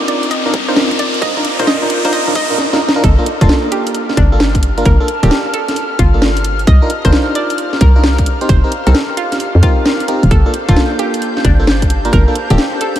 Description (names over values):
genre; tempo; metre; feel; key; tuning
UK garage, two-step garage; 132 BPM; 4/4; swing 65% on 16ths; G minor; A4 = 440 Hz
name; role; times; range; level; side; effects
airy breathy pad; sustained chords; 0.0-13.0 s; D6 to G6; -26 LUFS; left 2 dB; chorus, sidechain pumping
FM electric piano; stabs; 0.0-12.6 s; Bb3 to C5; -19 LUFS; right 1 dB; chorus, vintage 12-bit sampler grit, ping-pong delay
house drum kit; drums; 0.0-13.0 s; hi-hat, rim click, snare drum; -18 LUFS; equal; overdrive
riser; sound effects; 0.0-2.6 s; none; -21 LUFS; equal; none
warbly tape-like pad; texture; 0.0-13.0 s; Bb3 to Bb5; -26 LUFS; left 1 dB; chorus, built-in reverb, sidechain pumping
hollow square pluck; melody; 0.1-13.0 s; D4 to Eb5; -21 LUFS; equal; chorus, ping-pong delay
hollow knocking FM bass; bass; 0.5-12.6 s; D1 to F2; -12 LUFS; equal; sidechain pumping, high-pass filter
electronic kick drum; drums; 0.5-12.2 s; none; -13 LUFS; equal; overdrive, high-pass filter on kick, high-pass filter on room
room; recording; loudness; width
moderate huge ambient reverb, RT60 8.8 s; dreamy mix soaked in reverb, vinyl crackle; -10 LUFS; side -12 dB against mid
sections
0.0-3.0 A section; 3.0-13.0 B section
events
build-up 0.0-3.0; riser 0.0-2.6; filter sweep on synth pluck 0.0-3.0; drum fill 2.6-3.0; drop 3.0-13.0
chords
0.0 Cm11; 1.0 F7sus4; 3.0 Gm9; 6.7 Cm11; 8.3 F9sus4; 10.3 Gm9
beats
0.31 0.76 | 1.22 1.67 2.13 2.58 | 3.04 3.49 3.94 4.40 | 4.86 5.31 5.76 6.22 | 6.67 7.13 7.58 8.04 | 8.49 8.95 9.40 9.86 | 10.31 10.76 11.22 11.67 | 12.13 12.58